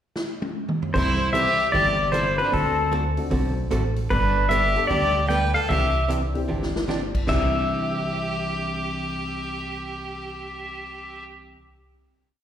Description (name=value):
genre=country, western swing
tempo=151 BPM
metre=4/4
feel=swing 64% on 8ths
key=C major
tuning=A4 = 439 Hz
part: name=swinging big-band drum kit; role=drums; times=0.2-7.4 s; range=crash cymbal, hi-hat, kick drum, rim click, snare drum, toms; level=-30 LUFS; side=equal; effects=none
part: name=pedal steel guitar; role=melody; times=0.9-11.2 s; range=A4 to G5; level=-24 LUFS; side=left 1 dB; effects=slapback echo
part: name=archtop guitar, miked and amplified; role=accompaniment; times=0.9-11.6 s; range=C3 to A4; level=-29 LUFS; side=right 3 dB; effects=slapback echo
part: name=upright bass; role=bass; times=0.9-11.5 s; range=G1 to D2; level=-26 LUFS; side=equal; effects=none
part: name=clear fiddle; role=second line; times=1.0-11.2 s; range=C4 to B4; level=-29 LUFS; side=right 2 dB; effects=slapback echo
part: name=dark upright piano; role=accompaniment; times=2.4-11.6 s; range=C3 to A4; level=-35 LUFS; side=left 5 dB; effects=slapback echo
room=studio reverb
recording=live gig heard through the venue's PA, recital hall reverb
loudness=-21 LUFS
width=side -10 dB against mid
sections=0.0-0.9 pickup bar; 0.9-7.3 A section; 7.3-10.5 final chord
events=drum fill 0.2-0.9, 6.5-6.9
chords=0.0 N.C.; 0.9 C6; 2.5 D7; 4.1 Gadd9; 5.7 Cadd9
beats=0.15 0.55 | 0.94 1.34 1.73 2.13 | 2.52 2.92 3.31 3.71 | 4.11 4.51 4.90 5.30 | 5.70 6.10 6.49 6.89 | 7.29 7.69 8.09 8.48 | 8.88 9.28 9.68 10.08